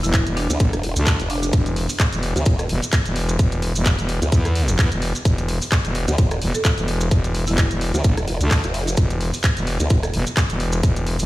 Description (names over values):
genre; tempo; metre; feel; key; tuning
bass house; 129 BPM; 4/4; swing 56% on 16ths; E phrygian; A4 = 440 Hz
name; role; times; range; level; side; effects
marimba with medium hard mallets; melody; 0.0-1.5, 6.5-7.7 s; D4 to A4; -29 LUFS; equal; ping-pong delay
growling FM bass; bass; 0.0-11.3 s; E1 to E2; -21 LUFS; equal; sidechain pumping
garage drum kit; drums; 0.0-11.3 s; handclaps, hi-hat, rim click; -26 LUFS; equal; none
maracas; percussion; 0.0-11.3 s; none; -31 LUFS; right 2 dB; none
electronic kick drum; drums; 0.1-10.9 s; none; -17 LUFS; equal; none
formant-sweep wobble bass; bass; 0.5-10.1 s; E1 to D2; -22 LUFS; equal; chorus, overdrive, sidechain pumping
room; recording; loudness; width
little or no reverb; played on a big sound system in a bare room, large studio reverb; -17 LUFS; side -17 dB against mid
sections
0.0-11.3 A section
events
none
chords
none